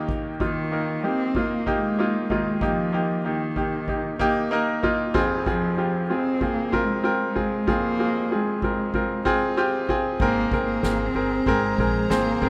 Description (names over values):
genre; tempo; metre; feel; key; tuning
piano-driven pop; 95 BPM; 4/4; swing 56% on 16ths; Ab major; A4 = 441 Hz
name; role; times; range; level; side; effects
bright grand piano; accompaniment; 0.0-12.5 s; F1 to C5; -26 LUFS; equal; none
soft-mallet drum kit; drums; 0.1-12.5 s; crash cymbal, kick drum, snare drum; -34 LUFS; equal; none
warm cello; melody; 0.4-12.5 s; Eb3 to C4; -29 LUFS; equal; none
warm studio string section; sustained chords; 10.2-12.5 s; Ab4 to Bb5; -38 LUFS; equal; none
upright bass; bass; 10.2-12.5 s; G1 to Bb1; -32 LUFS; equal; none
room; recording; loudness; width
moderate plate reverb, RT60 2.5 s; rough home demo mix; -24 LUFS; mono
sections
0.0-10.2 A section; 10.2-12.5 B section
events
none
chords
0.0 Eb; 5.1 Fm; 10.2 Abadd9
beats
| 0.09 0.72 1.35 1.98 | 2.62 3.25 3.88 4.51 | 5.15 5.78 6.41 7.04 | 7.68 8.31 8.94 9.58 | 10.21 10.84 11.47 12.11